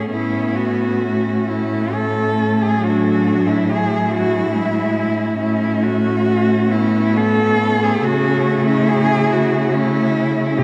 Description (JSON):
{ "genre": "classical, lyrical piece for cello ensemble", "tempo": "61-72 BPM", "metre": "3/4", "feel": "rubato", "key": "A major", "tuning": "A4 = 436 Hz", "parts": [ { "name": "clear cello", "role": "second line", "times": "0.0-10.6 s", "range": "C#4 to E4", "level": "-26 LUFS", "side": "equal", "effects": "none" }, { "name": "clear cello", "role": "accompaniment", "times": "0.0-10.6 s", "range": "F#3 to C#4", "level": "-24 LUFS", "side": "equal", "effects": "none" }, { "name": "rich cello", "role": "melody", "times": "0.1-10.6 s", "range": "E4 to A4", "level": "-22 LUFS", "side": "equal", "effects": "none" }, { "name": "warm cello", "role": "bass", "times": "0.1-10.6 s", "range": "A2 to C#3", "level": "-22 LUFS", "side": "equal", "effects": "none" } ], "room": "wet cathedral reverb, RT60 6.6 s", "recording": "none", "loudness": "-17 LUFS", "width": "mono", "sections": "0.1-10.6 A section", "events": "none", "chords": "0.1 A; 2.8 E7/A; 5.4 A; 8.1 A/C#", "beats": "| 0.11 1.00 1.95 | 2.83 3.69 4.55 | 5.41 6.27 7.18 | 8.06 8.90 9.74 | 10.59" }